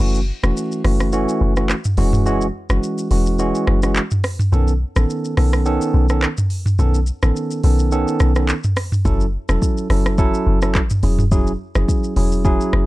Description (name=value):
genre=afrobeats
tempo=106 BPM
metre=4/4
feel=swing 55% on 16ths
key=F# dorian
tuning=A4 = 440 Hz
part: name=bright tine electric piano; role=accompaniment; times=0.0-12.9 s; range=D#3 to A4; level=-20 LUFS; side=right 2 dB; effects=plate reverb
part: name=deep log drum bass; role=bass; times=0.0-12.9 s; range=E1 to B1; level=-17 LUFS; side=equal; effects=none
part: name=afro-pop drum kit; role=drums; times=0.0-12.9 s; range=crash cymbal, handclaps, hi-hat, kick drum, rim click, shaker, toms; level=-20 LUFS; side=equal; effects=vintage 12-bit sampler grit
room=little or no reverb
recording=dark, warm production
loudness=-15 LUFS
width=side -18 dB against mid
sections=0.0-12.9 A section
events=break 0.0-9.1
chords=0.0 F#m7; 2.0 E69; 4.5 B9; 9.1 F#m7; 11.0 E69